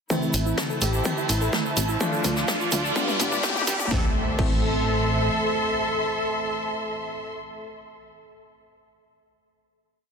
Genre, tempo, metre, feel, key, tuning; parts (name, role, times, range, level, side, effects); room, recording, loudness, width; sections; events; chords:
melodic techno; 126 BPM; 4/4; straight; A minor; A4 = 437 Hz
soft supersaw; melody; 0.1-7.7 s; E4 to A4; -30 LUFS; equal; sidechain pumping, low-pass filter, digital delay
dark analog pad; sustained chords; 0.1-7.2 s; A3 to E6; -34 LUFS; right 1 dB; chorus, sidechain pumping
analog pluck; arpeggios; 0.1-4.5 s; G3 to A4; -33 LUFS; right 1 dB; chorus, sidechain pumping, tape echo
synth brass stab; stabs; 0.1-7.7 s; E3 to D4; -32 LUFS; left 2 dB; chorus, cassette tape, sidechain pumping, tape echo
electronic kick drum; drums; 0.1-4.5 s; -28 LUFS; equal; distortion, high-pass filter on kick, high-pass filter on room
techno drum kit; drums; 0.1-4.5 s; crash cymbal, hi-hat, snare drum, toms; -30 LUFS; left 1 dB
vintage brush drum kit; drums; 0.1-3.8 s; ride cymbal, snare drum; -32 LUFS; right 1 dB; sidechain pumping on cymbals, high-pass filter on cymbals, soft clipping on snare, high-pass filter on snare, high-pass filter on room
egg shaker; percussion; 0.1-3.9 s; -34 LUFS; right 1 dB
riser and impact; sound effects; 1.4-7.3 s; -32 LUFS; equal
warm studio string section; texture; 0.1-7.4 s; E4 to C6; -31 LUFS; equal; sidechain pumping
tight sequencer bass; bass; 0.3-5.3 s; G1 to D2; -27 LUFS; equal; sidechain pumping
moderate huge ambient reverb, RT60 3.9 s; dense, heavily limited modern master, high-pass filter; -22 LUFS; side -6 dB against mid
0.1-3.9 build; 3.9-7.7 final chord
build-up 0.1-3.9; drum fill 0.1-3.9; filter sweep on synth pluck 0.1-3.9; filter sweep on supersaw synth 0.1-3.9; filter sweep 0.1-3.9; riser 1.4-3.9
0.1 Am; 2.0 Dm; 3.0 G; 3.9 Am